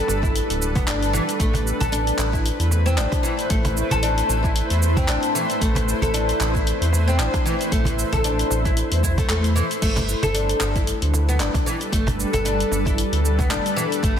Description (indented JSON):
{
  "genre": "organic downtempo",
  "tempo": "114 BPM",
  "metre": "4/4",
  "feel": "swing 56% on 16ths",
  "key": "unclear",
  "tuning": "A4 = 440 Hz",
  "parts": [
    { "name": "granular cloud pad", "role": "sustained chords", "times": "0.0-14.2 s", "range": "G3 to C5", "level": "-26 LUFS", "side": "equal", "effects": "built-in reverb, sidechain pumping" },
    { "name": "oud", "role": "arpeggios", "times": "0.0-14.2 s", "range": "E3 to A4", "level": "-25 LUFS", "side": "left 2 dB", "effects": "ping-pong delay" },
    { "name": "round analog bass", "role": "bass", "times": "0.1-14.2 s", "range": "D1 to E2", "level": "-22 LUFS", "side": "equal", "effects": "sidechain pumping" },
    { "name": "deep house drum kit", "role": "drums", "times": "0.1-14.2 s", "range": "cabasa, crash cymbal, handclaps, hi-hat", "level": "-28 LUFS", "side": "equal", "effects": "none" },
    { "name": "cajon", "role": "percussion", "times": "0.1-14.2 s", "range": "none", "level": "-28 LUFS", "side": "right 2 dB", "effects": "none" },
    { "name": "electronic kick drum", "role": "drums", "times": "0.2-14.1 s", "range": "none", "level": "-24 LUFS", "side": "equal", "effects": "none" }
  ],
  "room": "light reverb, digital ambience",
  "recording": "dense, heavily limited modern master",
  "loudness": "-18 LUFS",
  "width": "side -9 dB against mid",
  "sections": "0.0-9.8 A section; 9.8-14.2 A section",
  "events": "none",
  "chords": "0.0 G; 1.4 Amadd9; 9.8 G",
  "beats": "0.35 0.87 | 1.40 1.93 2.45 2.98 | 3.51 4.03 4.56 5.08 | 5.61 6.14 6.66 7.19 | 7.72 8.24 8.77 9.29 | 9.82 10.35 10.87 11.40 | 11.93 12.45 12.98 13.51 | 14.03"
}